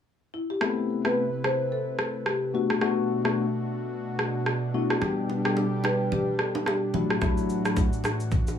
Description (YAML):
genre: afrobeats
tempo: 109 BPM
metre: 4/4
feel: swing 58% on 16ths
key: unclear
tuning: A4 = 440 Hz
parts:
  - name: marimba with soft mallets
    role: melody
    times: 0.3-8.6 s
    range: E4 to C5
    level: -30 LUFS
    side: left 1 dB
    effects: digital delay, plate reverb
  - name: tine electric piano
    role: accompaniment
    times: 0.6-7.8 s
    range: F#3 to G4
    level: -28 LUFS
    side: left 5 dB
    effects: plate reverb
  - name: warm analog pad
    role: sustained chords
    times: 0.6-8.6 s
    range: A2 to B4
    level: -30 LUFS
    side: right 1 dB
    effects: chorus, sidechain pumping, plate reverb
  - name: afro-pop drum kit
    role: drums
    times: 0.6-8.6 s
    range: kick drum, rim click, shaker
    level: -28 LUFS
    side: right 1 dB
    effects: none
  - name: congas and bongos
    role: percussion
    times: 5.0-8.6 s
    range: none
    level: -32 LUFS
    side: right 2 dB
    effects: none
room: moderate small room reverb, RT60 0.5 s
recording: small room ambience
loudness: -24 LUFS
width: side -8 dB against mid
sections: 0.6-8.6 A section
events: none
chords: 0.0 N.C.; 0.6 Amadd9; 2.5 Bm7; 5.0 G; 6.9 Dadd9